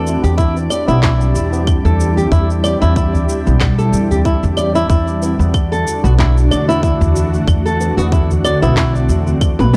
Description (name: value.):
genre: organic downtempo.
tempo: 93 BPM.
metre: 4/4.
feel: swing 55% on 16ths.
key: unclear.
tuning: A4 = 441 Hz.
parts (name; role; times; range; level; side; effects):
ethereal airy pad; sustained chords; 0.0-9.8 s; D3 to G4; -23 LUFS; equal; ensemble chorus, built-in reverb, sidechain pumping.
flamenco guitar; arpeggios; 0.0-9.8 s; E4 to D5; -22 LUFS; equal; tape echo.
upright bass; bass; 0.0-9.7 s; B1 to E2; -18 LUFS; equal; tube saturation.
drifting glass-harmonics texture; texture; 0.0-9.8 s; D4 to D5; -31 LUFS; equal; chorus, built-in reverb.
organic electronic drum kit; drums; 0.1-9.8 s; claves, handclaps, shaker, toms; -24 LUFS; equal; small room reverb.
tabla; percussion; 0.1-9.4 s; none; -27 LUFS; equal; none.
electronic kick drum; drums; 0.4-9.6 s; none; -18 LUFS; equal; small room reverb.
room: light reverb, small room reverb.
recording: dry, gritty hardware recording.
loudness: -14 LUFS.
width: mono.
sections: 0.0-9.8 A section.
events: drum fill 9.6.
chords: 0.0 C; 4.9 D7.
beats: 0.38 1.03 1.67 | 2.32 2.96 3.61 4.25 | 4.90 5.54 6.19 6.83 | 7.48 8.12 8.77 9.41.